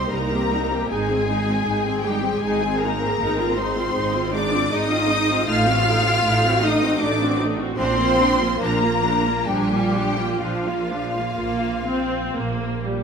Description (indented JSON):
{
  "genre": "classical, slow romantic movement for string orchestra",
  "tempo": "61-80 BPM",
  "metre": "3/4",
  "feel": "rubato",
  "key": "unclear",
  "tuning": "A4 = 439 Hz",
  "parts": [
    { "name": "clear symphonic violin section", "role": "melody", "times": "0.0-12.8 s", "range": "F5 to F6", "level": "-25 LUFS", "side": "left 4 dB", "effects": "none" },
    { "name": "clear symphonic violin section", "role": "second line", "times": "0.0-12.8 s", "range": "F4 to F5", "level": "-26 LUFS", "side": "left 3 dB", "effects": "none" },
    { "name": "rich symphonic viola section", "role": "accompaniment", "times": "0.0-13.0 s", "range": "F3 to Ab4", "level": "-24 LUFS", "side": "right 1 dB", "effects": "none" },
    { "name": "clear symphonic cello section", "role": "bass", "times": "0.0-12.8 s", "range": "F3 to F4", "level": "-25 LUFS", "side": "right 2 dB", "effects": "none" },
    { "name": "rich symphonic double bass section", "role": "bass", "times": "0.1-13.0 s", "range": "Ab1 to C2", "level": "-26 LUFS", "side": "right 3 dB", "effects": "none" }
  ],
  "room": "wet scoring stage reverb, RT60 1.6 s",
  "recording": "none",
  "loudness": "-18 LUFS",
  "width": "side -6 dB against mid",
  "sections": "0.0-13.0 A section",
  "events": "none",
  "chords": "0.0 Cm; 0.9 Ab; 3.2 Fm7/Ab; 5.5 Adim7; 7.8 Bb",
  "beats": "0.10 | 0.89 1.65 2.41 | 3.19 3.95 4.71 | 5.48 6.24 7.01 | 7.79 8.60 9.48 | 10.41 11.38 12.34"
}